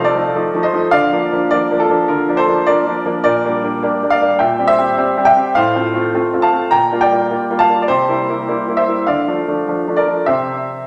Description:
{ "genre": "classical-period piano sonatina", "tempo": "103 BPM", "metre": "4/4", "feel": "straight", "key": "Bb major", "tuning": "A4 = 440 Hz", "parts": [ { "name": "clear grand piano", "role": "solo", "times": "0.0-10.9 s", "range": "A2 to Bb5", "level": "-16 LUFS", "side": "equal", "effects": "none" } ], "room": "wet recital hall reverb, RT60 1.5 s", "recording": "none", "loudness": "-15 LUFS", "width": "mono", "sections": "0.0-10.9 A section", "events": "none", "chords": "0.0 F7/C; 0.9 Bb/D; 3.3 Gm/Bb; 4.4 C7/Bb; 5.6 F/A; 6.7 Gm7/Bb; 7.9 C7; 9.1 Dm; 10.3 C" }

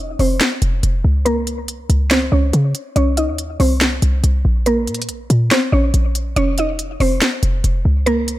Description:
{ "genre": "hip hop, trap", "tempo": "141 BPM", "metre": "4/4", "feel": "half-time", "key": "unclear", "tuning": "A4 = 440 Hz", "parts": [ { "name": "short 808-style bass", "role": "bass", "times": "0.0-8.4 s", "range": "F1 to Db3", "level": "-16 LUFS", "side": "equal", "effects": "none" }, { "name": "mallet-like synth pluck", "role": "melody", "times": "0.2-8.4 s", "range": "Bb3 to Eb5", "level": "-20 LUFS", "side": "equal", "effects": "chorus, low-pass filter, ping-pong delay" }, { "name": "trap drum kit", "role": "drums", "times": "0.2-8.4 s", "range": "finger snaps, hi-hat, snare drum", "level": "-19 LUFS", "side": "equal", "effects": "none" } ], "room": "little or no reverb", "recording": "none", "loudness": "-14 LUFS", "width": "side -15 dB against mid", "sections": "0.0-8.4 A section", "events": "filter sweep on synth pluck 0.0-6.4", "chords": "0.0 F5; 1.3 Bbmadd9/C; 3.0 Bbmadd9; 4.7 Bbm; 6.4 F5" }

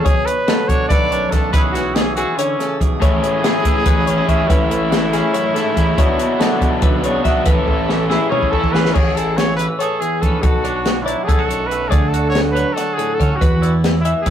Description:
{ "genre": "math rock and midwest emo", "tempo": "283 BPM (eighths)", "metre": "7/8", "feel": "straight", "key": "A major", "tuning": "A4 = 439 Hz", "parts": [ { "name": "clear trumpet", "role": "melody", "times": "0.0-14.3 s", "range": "C#4 to D5", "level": "-22 LUFS", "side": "equal", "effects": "none" }, { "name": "twangy electric guitar", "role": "accompaniment", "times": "0.0-14.3 s", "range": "E2 to G#4", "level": "-24 LUFS", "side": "right 4 dB", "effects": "none" }, { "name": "twelve-string electric guitar", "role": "arpeggios", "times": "0.0-14.3 s", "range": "G#4 to E5", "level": "-22 LUFS", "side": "left 4 dB", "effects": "spring reverb" }, { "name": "fuzz fingered electric bass", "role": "bass", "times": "0.0-14.3 s", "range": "A1 to D3", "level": "-22 LUFS", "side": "equal", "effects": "overdrive" }, { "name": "compact cocktail drum kit", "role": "drums", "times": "0.1-14.3 s", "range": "crash cymbal, hi-hat, kick drum, snare drum, toms", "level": "-18 LUFS", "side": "equal", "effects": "none" }, { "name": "raw garage guitar", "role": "riff", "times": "3.0-8.9 s", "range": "A2 to F#4", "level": "-21 LUFS", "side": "equal", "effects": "overdrive" } ], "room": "light reverb", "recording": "rough rehearsal-room recording", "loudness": "-14 LUFS", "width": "side -9 dB against mid", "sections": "0.0-8.9 A section; 8.9-14.3 B section", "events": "drum fill 7.7-8.9", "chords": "0.1 Bm9; 1.5 E6/B; 3.0 Amaj9; 6.0 Bm9; 7.5 Amaj9; 8.9 Amaj7; 10.4 Bm7; 11.9 Dmaj7; 13.4 E5" }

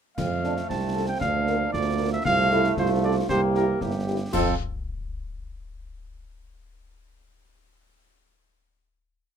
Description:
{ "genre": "military-style march for wind band", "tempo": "116 BPM", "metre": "2/4", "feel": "straight", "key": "F major", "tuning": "A4 = 440 Hz", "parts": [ { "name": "mellow cornet", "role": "melody", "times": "0.2-4.5 s", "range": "G4 to A5", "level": "-27 LUFS", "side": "right 1 dB", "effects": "none" }, { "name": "warm euphonium", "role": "second line", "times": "0.2-3.9 s", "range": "C4 to G4", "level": "-28 LUFS", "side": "right 4 dB", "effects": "none" }, { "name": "brilliant trombone section", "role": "sustained chords", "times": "0.2-4.6 s", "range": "E3 to C4", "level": "-32 LUFS", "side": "left 1 dB", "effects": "none" }, { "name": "warm tuba", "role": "bass", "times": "0.2-4.5 s", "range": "G1 to F2", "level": "-26 LUFS", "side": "right 3 dB", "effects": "none" }, { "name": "concert snare drum, clash cymbals and concert bass drum", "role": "drums", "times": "0.2-4.6 s", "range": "none", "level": "-34 LUFS", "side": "left 2 dB", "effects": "none" }, { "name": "mellow French horn section", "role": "accompaniment", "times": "0.4-4.5 s", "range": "Bb3 to Bb4", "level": "-29 LUFS", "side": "left 1 dB", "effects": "none" } ], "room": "light reverb", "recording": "close, detailed microphones", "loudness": "-22 LUFS", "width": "side -8 dB against mid", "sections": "0.2-4.3 A section; 4.3-5.4 final chord", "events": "none", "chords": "0.2 F; 1.2 Bb/D; 2.3 F/C; 3.3 C7; 4.3 F5" }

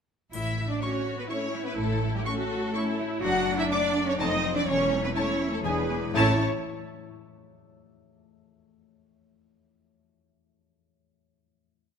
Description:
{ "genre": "cinematic, playful, whimsical film cue", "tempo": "124 BPM", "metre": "3/4", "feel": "straight", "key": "A major", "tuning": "A4 = 440 Hz", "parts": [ { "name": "rich studio violin section", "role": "second line", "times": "0.3-6.4 s", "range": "G4 to F#5", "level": "-31 LUFS", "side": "left 1 dB", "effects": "none" }, { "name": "concert harp", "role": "arpeggios", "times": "0.3-6.4 s", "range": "E2 to E5", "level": "-34 LUFS", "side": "left 6 dB", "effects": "none" }, { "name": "rich studio cello section", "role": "bass", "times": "0.3-6.4 s", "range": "G3 to F#4", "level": "-31 LUFS", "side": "right 2 dB", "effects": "none" }, { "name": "rich studio double bass section", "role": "bass", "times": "0.3-6.4 s", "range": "E1 to A1", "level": "-32 LUFS", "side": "right 3 dB", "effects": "none" }, { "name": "triangle", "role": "percussion", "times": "0.3-1.3 s", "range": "none", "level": "-47 LUFS", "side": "left 2 dB", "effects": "none" }, { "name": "rich studio violin section", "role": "melody", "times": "0.8-6.4 s", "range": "G#5 to D6", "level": "-33 LUFS", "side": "left 2 dB", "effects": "none" }, { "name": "rich studio viola section", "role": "accompaniment", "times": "0.8-6.4 s", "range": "A3 to G#4", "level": "-32 LUFS", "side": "right 1 dB", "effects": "none" }, { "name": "mellow French horn section", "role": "sustained chords", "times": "0.8-6.4 s", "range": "G#3 to E4", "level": "-36 LUFS", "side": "left 2 dB", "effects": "none" } ], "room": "moderate scoring stage reverb, RT60 1.7 s", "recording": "none", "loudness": "-24 LUFS", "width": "side -7 dB against mid", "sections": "0.3-6.2 A section; 6.2-7.6 final chord", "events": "none", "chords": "0.3 A; 3.2 D/F#; 4.2 F7; 4.7 A/E; 5.6 E7; 6.2 A" }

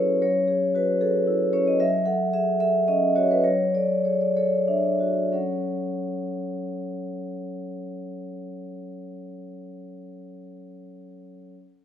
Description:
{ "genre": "classical, contemporary piece for solo vibraphone", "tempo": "59-76 BPM (dotted quarters)", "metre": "6/8", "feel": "straight", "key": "F# minor", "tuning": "A4 = 440 Hz", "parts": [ { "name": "vibraphone with medium mallets", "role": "solo", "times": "0.0-11.6 s", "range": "F#3 to F#5", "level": "-23 LUFS", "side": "equal", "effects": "none" } ], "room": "moderate recital hall reverb, RT60 1.3 s", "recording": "none", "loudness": "-21 LUFS", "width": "side -9 dB against mid", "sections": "0.0-5.3 A section; 5.3-9.3 B section", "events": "slowing down 1.0-5.3", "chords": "0.0 F#sus2; 3.4 D/F#; 5.3 F#m" }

